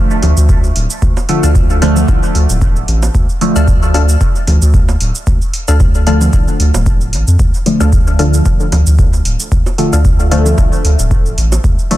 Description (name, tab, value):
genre	dub techno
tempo	113 BPM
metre	4/4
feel	swing 55% on 16ths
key	D minor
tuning	A4 = 440 Hz
part	deep mellow chord stab	stabs	0.0-12.0 s	D3 to A3	-17 LUFS	equal	chorus, phaser, sidechain pumping, dub echo
part	electronic cabasa and hi-hat	drums	0.1-12.0 s	none	-23 LUFS	right 2 dB	none
part	soft dub sub bass	bass	0.2-11.8 s	D1 to F2	-12 LUFS	equal	sidechain pumping
part	bongos and congas	percussion	0.2-11.6 s	none	-24 LUFS	right 2 dB	overdrive, sidechain pumping on perc, dub echo
part	electronic kick drum	drums	0.5-11.8 s	none	-13 LUFS	equal	none
part	wavetable chord stab	riff	1.4-10.5 s	D4 to F5	-23 LUFS	left 4 dB	cassette tape, sidechain pumping, dub echo
room	little or no reverb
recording	dense, heavily limited modern master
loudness	-9 LUFS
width	side -15 dB against mid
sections	0.0-12.0 A section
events	none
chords	0.0 Dm